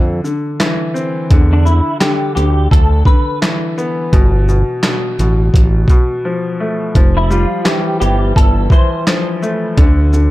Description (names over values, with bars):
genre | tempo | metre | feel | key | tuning
hip hop, boom-bap hip-hop | 85 BPM | 4/4 | swing 60% on 16ths | unclear | A4 = 440 Hz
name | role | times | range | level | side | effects
warm grand piano | accompaniment | 0.0-10.3 s | B2 to C4 | -18 LUFS | left 2 dB | cassette tape, high-pass filter, low-pass filter
smooth synth bass | bass | 0.0-10.3 s | F1 to F2 | -12 LUFS | equal | none
boom bap sampler-style drum kit | drums | 0.2-10.3 s | handclaps, hi-hat, kick drum, shaker, snare drum | -12 LUFS | equal | none
clean electric guitar | melody | 1.5-9.0 s | D4 to C5 | -19 LUFS | equal | ensemble chorus, high-pass filter, low-pass filter
room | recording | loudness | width
little or no reverb | dark, warm production | -11 LUFS | side -17 dB against mid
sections
0.0-7.0 A section; 7.0-10.3 B section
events
break 6.2-7.0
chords
0.0 Dm9; 1.3 E5; 4.1 G9; 7.0 Fmaj9; 9.8 N.C.